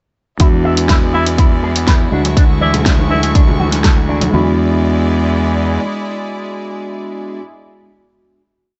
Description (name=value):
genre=nu-disco, nu disco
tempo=122 BPM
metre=4/4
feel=straight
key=E mixolydian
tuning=A4 = 439 Hz
part: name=mellow tine electric piano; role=accompaniment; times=0.4-7.4 s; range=G#3 to F#4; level=-22 LUFS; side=equal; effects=phaser, sidechain pumping, delay
part: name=clear studio violin section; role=sustained chords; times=0.4-7.4 s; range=G#3 to C#6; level=-26 LUFS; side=equal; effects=sidechain pumping
part: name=analog pluck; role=arpeggios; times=0.4-4.6 s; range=C#3 to B3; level=-28 LUFS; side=equal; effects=none
part: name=electric guitar with an envelope filter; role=riff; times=0.4-4.6 s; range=D4 to E5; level=-26 LUFS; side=equal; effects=subtle chorus, low-pass filter
part: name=fuzz fingered electric bass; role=bass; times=0.4-5.8 s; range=D2 to E2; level=-19 LUFS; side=equal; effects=overdrive
part: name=electronic kick drum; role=drums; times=0.4-3.9 s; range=none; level=-14 LUFS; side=equal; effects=small room ambience
part: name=pop drum kit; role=drums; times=0.4-4.3 s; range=hi-hat, snare drum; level=-21 LUFS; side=equal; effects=small room ambience
part: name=breathy tenor saxophone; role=melody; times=1.1-3.3 s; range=E4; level=-23 LUFS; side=equal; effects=tape echo
part: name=congas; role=percussion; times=2.7-4.3 s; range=none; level=-25 LUFS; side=equal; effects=none
room=little or no reverb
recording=nothing above 8.0 kHz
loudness=-13 LUFS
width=mono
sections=0.4-4.3 breakdown; 4.3-8.3 final chord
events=filter sweep on clean electric guitar 0.4-4.3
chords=0.4 E7; 2.1 Dmaj9#11; 4.3 E7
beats=| 0.40 0.89 1.38 1.88 | 2.37 2.86 3.35 3.84 | 4.33 4.83 5.32 5.81 | 6.30 6.79 7.29